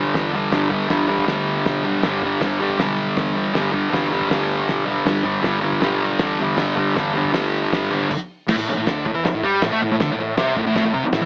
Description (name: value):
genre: garage rock duo or trio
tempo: 158 BPM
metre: 4/4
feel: straight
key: unclear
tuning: A4 = 441 Hz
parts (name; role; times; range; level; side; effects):
- thick fuzz guitar; riff; 0.0-11.3 s; G2 to A3; -21 LUFS; equal; distortion
- fingered electric bass; bass; 0.0-11.3 s; G1 to A2; -37 LUFS; equal; tube saturation
- cloth-damped thuddy drum kit; drums; 0.1-11.2 s; crash cymbal, hi-hat, kick drum, snare drum; -27 LUFS; equal; none
room: moderate studio reverb, RT60 0.5 s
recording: AM radio sound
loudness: -20 LUFS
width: mono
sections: 0.0-8.5 A section; 8.5-11.3 B section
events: stop 8.1-8.5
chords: 0.0 G; 8.5 A5